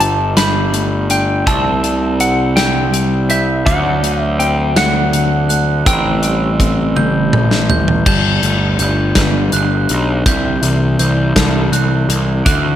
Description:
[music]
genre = post-rock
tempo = 55 BPM (dotted quarters)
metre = 6/8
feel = straight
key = G major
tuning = A4 = 438 Hz
[part]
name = clean lap steel guitar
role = melody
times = 0.0-7.3 s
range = E5 to B5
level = -18 LUFS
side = left 1 dB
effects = digital delay
[part]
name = pedal steel guitar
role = sustained chords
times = 0.0-12.8 s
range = F#3 to A5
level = -27 LUFS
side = right 3 dB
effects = none
[part]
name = mellow electric guitar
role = arpeggios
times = 0.0-12.8 s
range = A2 to B4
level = -20 LUFS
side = left 3 dB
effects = digital delay
[part]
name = fuzz picked electric bass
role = bass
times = 0.0-12.8 s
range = G1 to D2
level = -16 LUFS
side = equal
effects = overdrive
[part]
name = big rock drum kit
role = drums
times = 0.0-12.6 s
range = crash cymbal, hi-hat, kick drum, snare drum, toms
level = -17 LUFS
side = equal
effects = none
[part]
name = glockenspiel with brass mallets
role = arpeggios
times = 0.4-12.8 s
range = D6 to G6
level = -23 LUFS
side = right 4 dB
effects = digital delay
[sound]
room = light reverb, studio reverb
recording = none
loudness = -12 LUFS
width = side -11 dB against mid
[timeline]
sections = 0.0-8.1 A section; 8.1-12.8 B section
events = drum fill 7.0-8.1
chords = 0.0 Gadd9; 1.5 C6; 3.7 D7; 5.9 Am7; 8.1 Gadd9; 10.3 C6

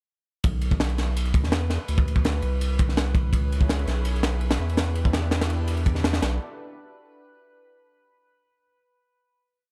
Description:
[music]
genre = drum and bass, jungle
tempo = 166 BPM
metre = 4/4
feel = straight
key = B minor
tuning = A4 = 440 Hz
[part]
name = saturated sub bass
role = bass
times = 0.4-6.4 s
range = B1 to E2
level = -27 LUFS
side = equal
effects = none
[part]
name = crisp fusion drum kit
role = drums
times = 0.4-6.3 s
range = kick drum, ride cymbal, snare drum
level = -27 LUFS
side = equal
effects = none
[part]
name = drifting glass-harmonics texture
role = texture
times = 1.0-6.2 s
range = B4 to B5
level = -45 LUFS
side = equal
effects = chorus, built-in reverb
[part]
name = lush unison pad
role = sustained chords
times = 3.3-6.4 s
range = C#4 to B4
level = -39 LUFS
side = equal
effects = chorus, vintage 12-bit sampler grit
[sound]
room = studio reverb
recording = dark, warm production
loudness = -24 LUFS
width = mono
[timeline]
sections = 0.4-6.2 drop; 6.2-7.7 final chord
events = drop 0.4-6.2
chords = 0.4 Bsus4; 1.9 Bm; 3.3 C#m7; 4.8 Em7; 6.2 Bm7

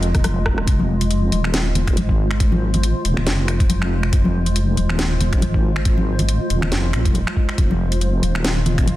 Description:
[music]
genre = deep dubstep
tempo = 139 BPM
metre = 4/4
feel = swing 56% on 16ths, half-time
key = F minor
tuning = A4 = 442 Hz
[part]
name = granular cloud pad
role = sustained chords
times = 0.0-9.0 s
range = Ab3 to F5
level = -26 LUFS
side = equal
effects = built-in reverb
[part]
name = deep soft wobble bass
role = bass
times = 0.0-9.0 s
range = Eb1 to Bb1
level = -20 LUFS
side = equal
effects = chorus
[part]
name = garage drum kit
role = drums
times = 0.0-9.0 s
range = finger snaps, hi-hat, rim click, snare drum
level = -25 LUFS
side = equal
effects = studio reverb, soft clipping on snare
[part]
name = electronic kick drum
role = drums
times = 0.1-8.9 s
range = none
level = -18 LUFS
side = equal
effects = studio reverb
[part]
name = congas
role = percussion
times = 0.1-9.0 s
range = none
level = -26 LUFS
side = left 1 dB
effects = dub echo
[sound]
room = light reverb, digital ambience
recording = dense, heavily limited modern master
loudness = -16 LUFS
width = side -15 dB against mid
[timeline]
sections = 0.0-9.0 A section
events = drum fill 0.0-0.7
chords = 0.0 Fm

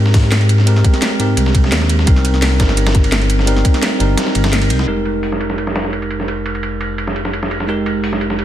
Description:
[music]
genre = liquid drum and bass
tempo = 171 BPM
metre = 4/4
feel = straight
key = F minor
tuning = A4 = 440 Hz
[part]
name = bell-like tine electric piano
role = accompaniment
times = 0.0-8.4 s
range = G3 to Bb4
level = -19 LUFS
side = right 1 dB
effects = tape echo
[part]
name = smooth synth bass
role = bass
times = 0.0-8.4 s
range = F1 to Ab2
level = -16 LUFS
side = equal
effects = none
[part]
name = dusty soul sampler-style drum kit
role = drums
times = 0.1-8.4 s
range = hi-hat, ride cymbal, snare drum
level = -22 LUFS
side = right 1 dB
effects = overdrive, high-pass filter on snare, low-pass filter on snare, high-pass filter on cymbals, low-pass filter on cymbals, high-pass filter on hats, low-pass filter on hats, high-pass filter on room, low-pass filter on room
[part]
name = electronic kick drum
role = drums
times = 0.1-3.7 s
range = none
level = -13 LUFS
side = equal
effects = none
[part]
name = garage drum kit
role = drums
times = 0.1-4.8 s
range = hi-hat, snare drum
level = -21 LUFS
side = equal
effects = none
[sound]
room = light reverb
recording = dense, heavily limited modern master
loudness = -13 LUFS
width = side -12 dB against mid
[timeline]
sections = 0.0-4.9 A section; 4.9-8.4 B section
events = kick drops out 4.2-4.9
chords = 0.0 Abmaj9; 2.1 Cm7; 4.9 Fm11

